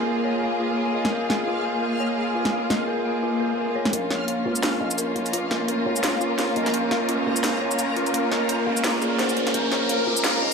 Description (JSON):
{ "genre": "half-time drum and bass", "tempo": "171 BPM", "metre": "4/4", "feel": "swing 57% on 16ths, half-time", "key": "Bb minor", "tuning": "A4 = 440 Hz", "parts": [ { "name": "rich symphonic string section", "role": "sustained chords", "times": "0.0-10.5 s", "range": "Bb3 to Bb4", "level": "-24 LUFS", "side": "right 1 dB", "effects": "none" }, { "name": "dark detuned synth bell", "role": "arpeggios", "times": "0.0-10.5 s", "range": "F4 to F5", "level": "-28 LUFS", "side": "left 2 dB", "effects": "chorus, low-pass filter, tape echo" }, { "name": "backwards swelling texture", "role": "texture", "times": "0.0-10.5 s", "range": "Bb4 to F5", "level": "-32 LUFS", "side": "right 1 dB", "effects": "built-in reverb, ensemble chorus" }, { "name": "drum and bass drum kit", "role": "drums", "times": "1.0-10.3 s", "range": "hi-hat, shaker, snare drum", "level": "-26 LUFS", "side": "right 1 dB", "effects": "overdrive, high-pass filter on cymbals, high-pass filter on snare, high-pass filter on hats, high-pass filter on perc, high-pass filter on room" }, { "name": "swell and riser", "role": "sound effects", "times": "3.3-10.5 s", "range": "none", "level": "-30 LUFS", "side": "left 2 dB", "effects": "none" }, { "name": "long sustained 808-style bass", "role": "bass", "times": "3.9-10.5 s", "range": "Bb1 to Db2", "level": "-35 LUFS", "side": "right 1 dB", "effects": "high-pass filter" } ], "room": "wet plate reverb, RT60 1.0 s, digital ambience", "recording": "dreamy mix soaked in reverb, high-pass filter", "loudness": "-21 LUFS", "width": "side -5 dB against mid", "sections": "0.0-3.9 A section; 3.9-10.5 B section", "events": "swell 3.3-3.9; build-up 3.9-10.5; riser 3.9-10.5; filter sweep on synth bell 3.9-10.5", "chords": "0.0 Bbm" }